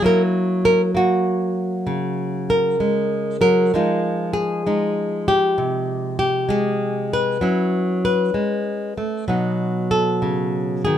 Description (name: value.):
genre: solo jazz.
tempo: 65 BPM.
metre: 4/4.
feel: swing 67% on 8ths, rubato.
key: unclear.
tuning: A4 = 435 Hz.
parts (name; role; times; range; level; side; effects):
flamenco guitar; solo; 0.0-11.0 s; B2 to Cb5; -18 LUFS; equal; none.
room: light reverb.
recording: minimal, uncompressed stereo recording.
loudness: -18 LUFS.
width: side -10 dB against mid.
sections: 0.0-11.0 A section.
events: none.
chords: 0.0 Gb7; 3.7 Fm9; 7.4 Gbm11; 9.3 B7.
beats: | 0.03 0.95 1.88 2.80 | 3.72 4.64 5.57 6.49 | 7.42 8.35 9.28 10.23.